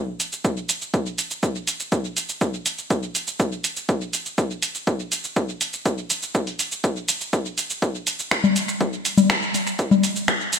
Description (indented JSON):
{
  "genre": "techno",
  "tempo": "122 BPM",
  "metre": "4/4",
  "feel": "straight",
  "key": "none",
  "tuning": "none",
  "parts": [
    { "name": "punchy analog drum machine", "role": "drums", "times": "0.2-10.6 s", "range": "congas, finger snaps, hi-hat, shaker", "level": "-21 LUFS", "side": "left 2 dB", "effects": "tape echo" },
    { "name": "electronic kick drum", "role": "drums", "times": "0.4-10.4 s", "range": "none", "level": "-23 LUFS", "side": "equal", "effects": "high-pass filter on kick, high-pass filter on room" }
  ],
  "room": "moderate echo chamber reverb, RT60 1.8 s",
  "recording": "echo-heavy mix",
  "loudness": "-21 LUFS",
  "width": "side -6 dB against mid",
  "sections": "0.0-10.6 A section",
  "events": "build-up 0.0-10.6",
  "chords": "none"
}